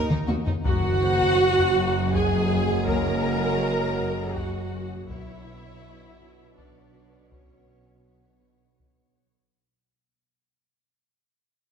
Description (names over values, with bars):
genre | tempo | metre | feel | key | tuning
cinematic, suspense film score | 81 BPM | 3/4 | straight | unclear | A4 = 440 Hz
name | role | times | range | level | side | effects
rich studio violin section | melody | 0.0-9.3 s | Eb4 to C#5 | -38 LUFS | left 2 dB | none
concert harp | riff | 0.0-9.6 s | F#2 to Eb4 | -31 LUFS | left 7 dB | none
Celtic harp | texture | 0.0-7.0 s | Bb3 to Gb5 | -35 LUFS | left 1 dB | none
warm studio cello section | bass | 0.1-9.3 s | Eb2 to B2 | -32 LUFS | right 3 dB | none
taiko ensemble | drums | 0.1-9.5 s | none | -29 LUFS | left 1 dB | none
rich studio double bass section | bass | 0.3-9.3 s | F#1 to Eb2 | -31 LUFS | right 4 dB | none
warm studio violin section | second line | 0.6-8.8 s | B4 to Bb5 | -30 LUFS | left 2 dB | none
mellow French horn section | sustained chords | 0.6-9.2 s | G#3 to F#4 | -35 LUFS | equal | none
warm studio viola section | accompaniment | 0.7-8.8 s | B3 to Bb4 | -25 LUFS | right 2 dB | none
mellow trombone section | sustained chords | 0.7-9.2 s | C#3 to F#3 | -36 LUFS | right 3 dB | none
room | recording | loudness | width
wet concert hall reverb, RT60 2.0 s | none | -21 LUFS | side -7 dB against mid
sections
0.0-9.5 A section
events
fade-out 0.0-9.5; drum fill 0.1-0.7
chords
0.0 Ebm; 0.7 F#sus2; 5.1 Bmadd9